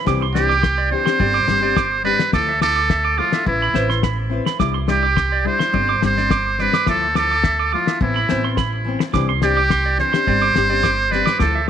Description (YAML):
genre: highlife guitar band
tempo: 106 BPM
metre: 4/4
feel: straight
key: C major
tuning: A4 = 444 Hz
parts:
  - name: nylon-string guitar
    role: accompaniment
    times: 0.0-11.6 s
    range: E3 to B4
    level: -25 LUFS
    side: left 10 dB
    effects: none
  - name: clean electric guitar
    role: arpeggios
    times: 0.0-11.7 s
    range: C5 to D6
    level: -24 LUFS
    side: right 12 dB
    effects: none
  - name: upright bass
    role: bass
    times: 0.1-11.7 s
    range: G1 to D2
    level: -23 LUFS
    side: right 1 dB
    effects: none
  - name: cloth-damped thuddy drum kit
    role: drums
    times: 0.1-11.5 s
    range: kick drum, snare drum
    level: -23 LUFS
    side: left 4 dB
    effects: none
  - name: trumpet with metal mute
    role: melody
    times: 0.3-11.7 s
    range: E4 to C5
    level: -19 LUFS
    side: right 2 dB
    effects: tape echo
room: light reverb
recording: 1960s-style stereo with parts hard left and right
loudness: -15 LUFS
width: side -9 dB against mid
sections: 0.0-11.7 A section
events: none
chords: 0.1 Cadd9; 1.2 Gsus4; 2.3 Dmadd9; 3.5 Amadd9; 4.6 Cadd9; 5.7 Gsus4; 6.9 Dmadd9; 8.0 Amadd9; 9.1 Cadd9; 10.3 Gsus4